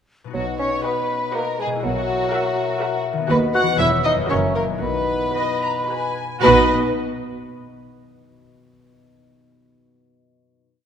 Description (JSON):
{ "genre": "cinematic, playful, whimsical film cue", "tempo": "109-123 BPM", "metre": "3/4", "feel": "straight", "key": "B major", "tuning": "A4 = 440 Hz", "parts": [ { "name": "concert harp", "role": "arpeggios", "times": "0.2-6.7 s", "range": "F#2 to D#5", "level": "-29 LUFS", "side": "left 7 dB", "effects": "none" }, { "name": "mellow hollow silver concert flute", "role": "second line", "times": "0.3-6.7 s", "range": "F#5 to F#6", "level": "-25 LUFS", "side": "equal", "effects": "none" }, { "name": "mellow bassoon", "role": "accompaniment", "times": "0.3-6.6 s", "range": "F#3 to F#4", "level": "-24 LUFS", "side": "right 2 dB", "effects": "none" }, { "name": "mellow French horn section", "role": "sustained chords", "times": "0.3-6.6 s", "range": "D#4 to E5", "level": "-27 LUFS", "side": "left 4 dB", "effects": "none" }, { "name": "rich studio double bass section", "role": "bass", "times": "0.3-6.7 s", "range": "E1 to D#2", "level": "-27 LUFS", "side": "right 4 dB", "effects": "none" }, { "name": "warm studio cello section", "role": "bass", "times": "0.3-6.7 s", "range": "D#2 to B2", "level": "-26 LUFS", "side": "right 5 dB", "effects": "none" }, { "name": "warm studio violin section", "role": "melody", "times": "0.4-6.7 s", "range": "F#4 to F#5", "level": "-27 LUFS", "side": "left 3 dB", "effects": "none" }, { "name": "warm studio viola section", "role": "accompaniment", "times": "0.8-6.7 s", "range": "F#4 to B4", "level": "-26 LUFS", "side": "right 2 dB", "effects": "none" }, { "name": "rich studio violin section", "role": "second line", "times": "0.9-6.7 s", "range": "B4 to A#5", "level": "-28 LUFS", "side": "left 3 dB", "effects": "none" } ], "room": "wet concert hall reverb, RT60 2.1 s", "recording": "none", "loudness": "-18 LUFS", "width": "side -8 dB against mid", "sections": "0.3-6.4 A section; 6.4-8.0 final chord", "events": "none", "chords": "0.3 B; 1.8 F#7/B; 3.3 B/D#; 3.8 C#m7/E; 4.3 F#7; 4.8 B" }